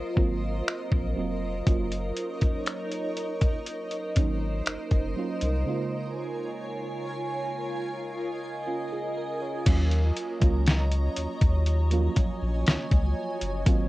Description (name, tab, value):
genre	contemporary R&B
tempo	60 BPM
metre	4/4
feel	straight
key	Eb dorian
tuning	A4 = 440 Hz
part	mellow FM electric piano	accompaniment	0.0-13.9 s	Db3 to Db5	-33 LUFS	right 5 dB	chorus, cassette tape
part	granular cloud pad	sustained chords	0.0-13.9 s	Gb3 to Bb5	-33 LUFS	equal	built-in reverb, cassette tape
part	saturated sub bass	bass	0.0-13.9 s	F1 to Eb2	-27 LUFS	equal	none
part	dusty soul sampler-style drum kit	drums	0.2-13.9 s	crash cymbal, finger snaps, hi-hat, kick drum, rim click, snare drum	-24 LUFS	equal	cassette tape
room	light reverb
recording	home recording on cassette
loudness	-25 LUFS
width	side -18 dB against mid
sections	0.0-9.7 A section; 9.7-13.9 B section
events	break 5.7-9.7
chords	0.0 Ab13; 1.7 Ebm7/Gb; 5.7 Db6; 9.7 Ebm7